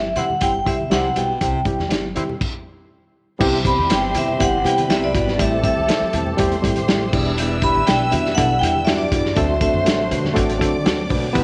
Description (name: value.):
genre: uptempo 1960s-style soul.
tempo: 121 BPM.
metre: 4/4.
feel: straight.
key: unclear.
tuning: A4 = 440 Hz.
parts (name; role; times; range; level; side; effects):
vibraphone with hard mallets; melody; 0.0-10.1 s; D5 to B5; -23 LUFS; equal; none.
reed electric piano; accompaniment; 0.0-11.4 s; G3 to B4; -25 LUFS; equal; none.
upright bass; bass; 0.0-11.4 s; E1 to D3; -28 LUFS; equal; none.
warm horn section; second line; 0.2-11.4 s; E3 to C5; -34 LUFS; equal; none.
vintage drum kit; drums; 0.2-11.4 s; crash cymbal, hi-hat, kick drum, snare drum; -25 LUFS; equal; none.
congas; percussion; 0.2-11.4 s; none; -36 LUFS; equal; none.
breathy baritone saxophone; riff; 0.9-11.4 s; D2 to C3; -31 LUFS; equal; none.
clear studio string section; second line; 3.4-11.4 s; A4 to E6; -32 LUFS; equal; none.
tonewheel organ; sustained chords; 3.4-11.4 s; E3 to G4; -31 LUFS; equal; none.
room: moderate echo chamber reverb, RT60 1.8 s, small room ambience.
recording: none.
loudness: -19 LUFS.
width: mono.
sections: 0.0-3.4 A section; 3.4-11.4 B section.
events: stop 2.4-3.4.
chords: 0.0 C; 3.4 Cmaj7; 5.4 Am7; 7.1 Em7; 9.4 D7.